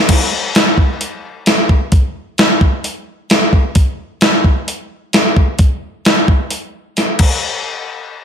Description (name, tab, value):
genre	rock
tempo	131 BPM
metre	4/4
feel	straight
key	none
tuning	none
part	gated 80s digital drum machine	drums	0.1-7.3 s	crash cymbal, hi-hat, kick drum, snare drum	-11 LUFS	equal	gated reverb, gated reverb snare
room	moderate plate reverb, RT60 1.3 s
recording	dreamy mix soaked in reverb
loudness	-12 LUFS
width	side -8 dB against mid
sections	0.1-7.4 A section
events	drum fill 7.0-7.4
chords	none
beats	| 0.09 0.55 1.00 1.46 | 1.92 2.38 2.84 3.29 | 3.75 4.21 4.67 5.13 | 5.59 6.05 6.51 6.97